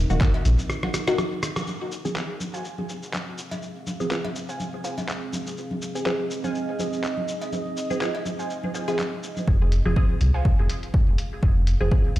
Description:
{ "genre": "dub techno", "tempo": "123 BPM", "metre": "4/4", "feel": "swing 55% on 16ths", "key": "F phrygian", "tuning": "A4 = 440 Hz", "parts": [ { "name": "deep dark ambient pad", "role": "sustained chords", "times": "0.0-12.2 s", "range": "C4 to F5", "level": "-33 LUFS", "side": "right 3 dB", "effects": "chorus, built-in reverb, sidechain pumping" }, { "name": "round analog bass", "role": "bass", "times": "0.0-0.6, 9.5-12.2 s", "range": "Eb1 to C2", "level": "-20 LUFS", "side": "equal", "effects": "tube saturation, sidechain pumping" }, { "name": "filtered dub chord stab", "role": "stabs", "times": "0.1-12.2 s", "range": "Eb3 to Ab4", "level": "-29 LUFS", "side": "equal", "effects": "phaser, sidechain pumping, dub echo" }, { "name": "lo-fi sampler-style drum kit", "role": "drums", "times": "0.1-12.2 s", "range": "handclaps, hi-hat, rim click, shaker", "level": "-32 LUFS", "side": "equal", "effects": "studio reverb" }, { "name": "congas and cowbell", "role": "percussion", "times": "0.1-9.5 s", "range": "none", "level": "-34 LUFS", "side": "left 1 dB", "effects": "sidechain pumping on perc, studio reverb, dub echo" }, { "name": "electronic kick drum", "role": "drums", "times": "0.2-0.3, 9.5-12.0 s", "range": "none", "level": "-20 LUFS", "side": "equal", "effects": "studio reverb" }, { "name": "warbly dusty pluck", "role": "riff", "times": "2.5-10.4 s", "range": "C5 to Ab5", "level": "-37 LUFS", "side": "right 2 dB", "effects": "chorus, phaser, sidechain pumping, dub echo" } ], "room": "light reverb", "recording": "played on a big sound system in a bare room, large studio reverb", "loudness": "-23 LUFS", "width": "side -15 dB against mid", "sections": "0.0-1.7 A section; 1.7-9.5 B section; 9.5-12.2 A section", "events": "break 0.7-1.7; drum fill 0.7-1.7; band accent 1.5", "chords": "0.0 Ebm; 1.7 Fm" }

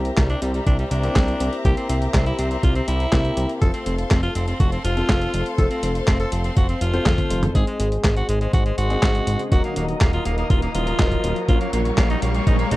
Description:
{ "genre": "italo disco", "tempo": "122 BPM", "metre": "4/4", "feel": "straight", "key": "unclear", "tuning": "A4 = 440 Hz", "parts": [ { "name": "rich symphonic string section", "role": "sustained chords", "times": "0.0-12.8 s", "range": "G4 to Eb6", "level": "-30 LUFS", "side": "left 2 dB", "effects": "low-pass filter" }, { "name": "warm grand piano", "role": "stabs", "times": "0.0-12.8 s", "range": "Gb3 to C5", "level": "-29 LUFS", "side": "left 2 dB", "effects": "low-pass filter" }, { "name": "fat analog bass", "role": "bass", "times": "0.0-12.8 s", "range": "Eb1 to F2", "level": "-23 LUFS", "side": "equal", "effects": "none" }, { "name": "dusty soul sampler-style drum kit", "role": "drums", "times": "0.1-12.8 s", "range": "handclaps, hi-hat, snare drum, toms", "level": "-25 LUFS", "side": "equal", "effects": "high-pass filter on hats, high-pass filter on snare, high-pass filter on toms" }, { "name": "raspy alto saxophone", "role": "melody", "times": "0.2-12.8 s", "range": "G3 to A4", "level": "-27 LUFS", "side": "equal", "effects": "tape echo" }, { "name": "electronic kick drum", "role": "drums", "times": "0.2-12.6 s", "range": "none", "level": "-19 LUFS", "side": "equal", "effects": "none" }, { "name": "riser", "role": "sound effects", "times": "8.7-12.8 s", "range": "none", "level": "-30 LUFS", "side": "right 1 dB", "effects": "none" } ], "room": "little or no reverb", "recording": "dry, close 1970s-style studio recording", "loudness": "-18 LUFS", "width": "side -18 dB against mid", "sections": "0.0-7.6 A section; 7.6-12.8 B section", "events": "drum fill 7.1-7.6; filter sweep on string section 7.6-12.8; riser 8.7-12.8", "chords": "0.0 C7; 3.6 F; 7.6 Ab; 9.5 Ebm; 11.5 Bbm" }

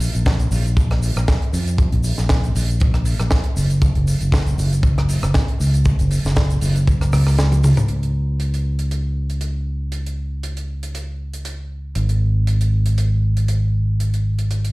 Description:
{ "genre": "nu-disco, nu disco", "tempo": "118 BPM", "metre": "4/4", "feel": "swing 54% on 16ths", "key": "unclear", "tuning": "A4 = 441 Hz", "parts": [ { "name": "fingered electric bass", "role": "bass", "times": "0.0-14.7 s", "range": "F#1 to E#2", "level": "-18 LUFS", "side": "equal", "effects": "none" }, { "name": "tight funk drum kit", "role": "drums", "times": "0.0-14.7 s", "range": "hi-hat, rim click, shaker, snare drum, toms", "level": "-26 LUFS", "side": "equal", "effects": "none" }, { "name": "kick drum", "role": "drums", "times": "0.3-7.0 s", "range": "none", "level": "-17 LUFS", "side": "equal", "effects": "none" } ], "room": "little or no reverb", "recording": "played on a big sound system in a bare room, large studio reverb", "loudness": "-16 LUFS", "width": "side -22 dB against mid", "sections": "0.0-7.9 A section; 7.9-14.7 B section", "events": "kick drops out 7.4-7.9; drum fill 7.5-7.9", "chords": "none" }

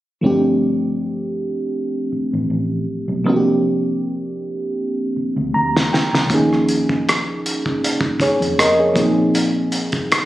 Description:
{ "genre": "R&B, neo-soul", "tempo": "79 BPM", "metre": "4/4", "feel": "swing 54% on 16ths", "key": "unclear", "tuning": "A4 = 441 Hz", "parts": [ { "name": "mellow FM electric piano", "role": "accompaniment", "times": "0.2-10.3 s", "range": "F3 to Bb5", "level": "-18 LUFS", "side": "equal", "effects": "chorus" }, { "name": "vintage muted fingered electric bass", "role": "bass", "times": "0.2-10.3 s", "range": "G1 to F2", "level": "-26 LUFS", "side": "equal", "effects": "none" }, { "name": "cloth-damped thuddy drum kit", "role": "drums", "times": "5.8-10.3 s", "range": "hi-hat, kick drum, rim click, snare drum", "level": "-19 LUFS", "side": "equal", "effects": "none" } ], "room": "light reverb, studio reverb", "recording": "recorded on a phone in the room", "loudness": "-16 LUFS", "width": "side -15 dB against mid", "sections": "0.2-10.3 A section", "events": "FM electric piano fill 5.2-6.3; drum fill 5.5-6.3", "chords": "0.2 G9sus4; 3.3 C9sus4; 6.3 Eb9sus4; 9.0 Bb9sus4" }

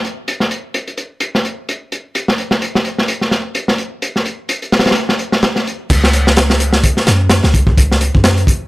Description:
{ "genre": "breakbeat, breaks", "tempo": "128 BPM", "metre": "4/4", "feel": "swing 56% on 16ths", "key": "unclear", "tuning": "A4 = 440 Hz", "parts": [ { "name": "crunchy breakbeat drum kit", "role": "drums", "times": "0.0-8.6 s", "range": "crash cymbal, hi-hat, kick drum, snare drum", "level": "-13 LUFS", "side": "equal", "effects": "low-pass filter on kick, low-pass filter on hats, low-pass filter on cymbals, low-pass filter on snare, low-pass filter on room" }, { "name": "warm 808-style bass", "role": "bass", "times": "5.9-8.5 s", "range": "C#2 to F#2", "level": "-14 LUFS", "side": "equal", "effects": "none" } ], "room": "little or no reverb", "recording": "none", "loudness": "-12 LUFS", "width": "side -20 dB against mid", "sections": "0.0-5.9 A section; 5.9-8.7 B section", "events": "drop 5.9-8.7", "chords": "none" }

